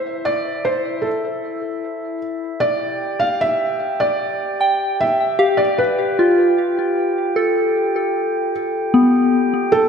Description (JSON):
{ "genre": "ambient", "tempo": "76 BPM", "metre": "4/4", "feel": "straight", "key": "G mixolydian", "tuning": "A4 = 441 Hz", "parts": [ { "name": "felt-muted upright piano", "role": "melody", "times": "0.0-9.9 s", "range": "A4 to F5", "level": "-20 LUFS", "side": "right 1 dB", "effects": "ping-pong delay" }, { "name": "glass harmonica", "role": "texture", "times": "0.0-9.9 s", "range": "E4 to G5", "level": "-25 LUFS", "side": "right 1 dB", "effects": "none" }, { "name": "soft synth bell", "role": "arpeggios", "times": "4.6-9.9 s", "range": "B3 to G5", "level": "-16 LUFS", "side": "left 1 dB", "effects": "chorus, ping-pong delay" } ], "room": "wet concert hall reverb, RT60 2.3 s", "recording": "dark, warm production", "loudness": "-16 LUFS", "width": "side -6 dB against mid", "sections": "0.0-9.9 A section", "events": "fade-in on glass harmonica 0.0-9.9; fade-in on felt piano 0.0-9.9", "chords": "0.0 Am; 2.6 Gadd9" }